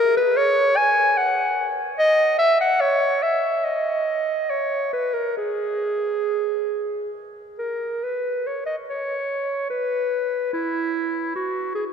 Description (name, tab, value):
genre	classical, baroque-style fantasia for unaccompanied clarinet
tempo	66-75 BPM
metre	3/4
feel	rubato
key	G# minor, B major from 8.0 s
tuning	A4 = 442 Hz
part	warm clarinet	solo	0.0-11.8 s	E4 to G#5	-20 LUFS	equal	none
room	wet cathedral reverb, RT60 5.2 s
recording	dark, warm production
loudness	-20 LUFS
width	side -7 dB against mid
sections	0.0-8.0 A section; 8.0-11.9 A section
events	none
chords	none